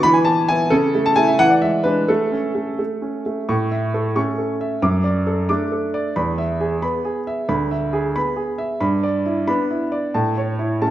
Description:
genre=classical-period piano sonatina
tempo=90 BPM (dotted quarters)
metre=6/8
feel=straight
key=A major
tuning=A4 = 440 Hz
part: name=warm grand piano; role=solo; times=0.0-10.9 s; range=D2 to D6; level=-17 LUFS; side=equal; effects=none
room=wet recital hall reverb, RT60 1.6 s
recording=none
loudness=-17 LUFS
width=side -13 dB against mid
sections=0.0-3.5 A section; 3.5-10.9 B section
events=none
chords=0.1 E5; 0.7 A/C#; 1.4 E7; 2.1 A; 4.8 D/F#; 6.2 E; 7.5 E7/D; 8.8 Em7/G; 10.1 A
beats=0.05 | 0.72 1.40 | 2.09 2.79 | 3.49 4.16 | 4.83 5.49 | 6.16 6.83 | 7.49 8.15 | 8.82 9.48 | 10.15 10.82

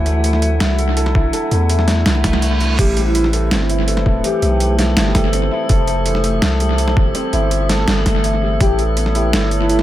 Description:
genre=half-time drum and bass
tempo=165 BPM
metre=4/4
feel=half-time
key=A minor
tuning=A4 = 443 Hz
part: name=dark analog pad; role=sustained chords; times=0.0-9.8 s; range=A3 to F#5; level=-26 LUFS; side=left 1 dB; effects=wide subtle chorus, sidechain pumping
part: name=felt-muted upright piano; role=arpeggios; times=0.0-9.8 s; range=E3 to A4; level=-22 LUFS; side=equal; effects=vintage 12-bit sampler grit, analog delay
part: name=long sustained 808-style bass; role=bass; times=0.0-9.8 s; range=F1 to E2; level=-17 LUFS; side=equal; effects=tube saturation
part: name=metallic inharmonic drone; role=texture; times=0.0-9.8 s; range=E4 to A4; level=-25 LUFS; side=right 1 dB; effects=chorus, built-in reverb
part: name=boom bap sampler-style drum kit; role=drums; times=0.1-9.8 s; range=crash cymbal, hi-hat, snare drum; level=-21 LUFS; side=right 1 dB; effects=overdrive, analog delay
part: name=electronic kick drum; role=drums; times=1.1-8.7 s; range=none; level=-17 LUFS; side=equal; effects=overdrive
part: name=reverse cymbal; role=sound effects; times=2.2-2.8 s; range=none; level=-25 LUFS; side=right 3 dB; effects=none
part: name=breathy flute-like synth lead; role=melody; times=2.8-4.8, 8.6-9.8 s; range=E4 to G4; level=-23 LUFS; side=equal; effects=analog chorus, analog delay
room=light reverb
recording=echo-heavy mix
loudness=-13 LUFS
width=side -13 dB against mid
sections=0.0-9.8 A section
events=reverse cymbal 2.2-2.8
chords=0.0 D; 2.8 Am; 5.7 Fsus2; 8.6 A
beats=0.24 0.60 0.97 | 1.33 1.70 2.06 2.42 | 2.79 3.15 3.51 3.88 | 4.24 4.61 4.97 5.33 | 5.70 6.06 6.42 6.79 | 7.15 7.51 7.88 8.24 | 8.61 8.97 9.33 9.70

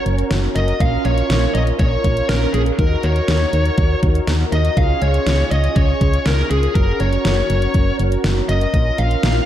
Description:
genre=synth-pop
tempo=121 BPM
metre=4/4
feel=straight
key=unclear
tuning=A4 = 439 Hz
part: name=mellow synth brass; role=accompaniment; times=0.0-9.5 s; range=Db4 to Bb4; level=-23 LUFS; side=right 1 dB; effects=chorus
part: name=solid FM bass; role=bass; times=0.1-9.4 s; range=Gb1 to Eb2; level=-18 LUFS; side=equal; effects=none
part: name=pop drum kit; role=drums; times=0.1-9.3 s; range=hi-hat, kick drum, snare drum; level=-20 LUFS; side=equal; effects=overdrive
part: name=bluesy overdriven lead guitar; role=melody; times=0.6-9.5 s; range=Ab4 to F5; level=-22 LUFS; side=equal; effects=distortion, tape echo
room=moderate lush hall reverb, RT60 2.1 s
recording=dreamy mix soaked in reverb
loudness=-14 LUFS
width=side -11 dB against mid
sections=0.0-9.5 A section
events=none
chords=0.0 Gb; 0.8 Bbm; 2.8 Ebm; 4.8 Db; 6.8 Gb; 8.7 Bbm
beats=0.31 | 0.80 1.30 1.79 2.29 | 2.79 3.28 3.78 4.28 | 4.77 5.27 5.76 6.26 | 6.75 7.25 7.75 8.24 | 8.74 9.23

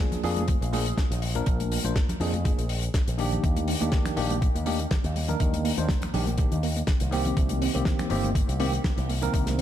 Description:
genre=nu-disco, nu disco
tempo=122 BPM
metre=4/4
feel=swing 54% on 16ths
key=unclear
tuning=A4 = 441 Hz
part: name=bell-like tine electric piano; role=accompaniment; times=0.0-9.6 s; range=Eb3 to C5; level=-30 LUFS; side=equal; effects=medium stereo tremolo, sidechain pumping, tape echo
part: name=damped 70s drum kit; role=drums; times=0.0-9.6 s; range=finger snaps, hi-hat, snare drum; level=-33 LUFS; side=left 3 dB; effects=none
part: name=congas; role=percussion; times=0.1-9.6 s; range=none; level=-35 LUFS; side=left 3 dB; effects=none
part: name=picked electric bass with an envelope filter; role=bass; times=0.2-9.6 s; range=G1 to F2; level=-28 LUFS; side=equal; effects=none
part: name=electronic kick drum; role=drums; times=0.5-9.4 s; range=none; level=-25 LUFS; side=equal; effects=none
part: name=soft round pluck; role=arpeggios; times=3.4-9.6 s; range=D3 to C4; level=-34 LUFS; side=right 4 dB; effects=none
room=light reverb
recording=none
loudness=-23 LUFS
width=side -11 dB against mid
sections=0.0-9.6 A section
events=none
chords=0.0 Bb7; 3.4 Ebmaj7; 7.1 Cm7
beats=0.48 0.98 | 1.47 1.96 2.45 2.94 | 3.44 3.93 4.42 4.91 | 5.40 5.89 6.39 6.88 | 7.37 7.86 8.35 8.85 | 9.34

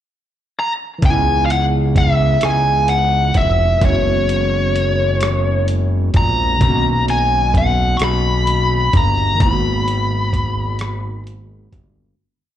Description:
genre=slow six-eight R&B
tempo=43 BPM (dotted quarters)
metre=6/8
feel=straight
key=unclear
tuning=A4 = 439 Hz
part: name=bluesy overdriven lead guitar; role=melody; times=0.6-11.2 s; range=C#5 to C#6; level=-18 LUFS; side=left 1 dB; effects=distortion, slapback echo
part: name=tine electric piano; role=accompaniment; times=1.0-12.2 s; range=C#3 to F#4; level=-23 LUFS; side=right 2 dB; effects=medium stereo tremolo, slapback echo
part: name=fat analog bass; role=bass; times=1.0-12.2 s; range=E#1 to C#2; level=-18 LUFS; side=equal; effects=none
part: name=dusty soul sampler-style drum kit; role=drums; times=1.0-11.9 s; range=hi-hat, kick drum, rim click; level=-18 LUFS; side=equal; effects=none
room=digital ambience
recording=live gig heard through the venue's PA, club reverb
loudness=-14 LUFS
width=side -11 dB against mid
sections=0.0-1.0 pickup bar; 1.0-12.2 verse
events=fade-out 9.4-12.2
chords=0.0 N.C.; 1.0 C#m7; 3.8 F#9sus4; 6.6 Bmaj7; 9.4 G#m7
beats=| 1.03 2.43 | 3.82 5.22 | 6.61 8.01 | 9.40 10.80

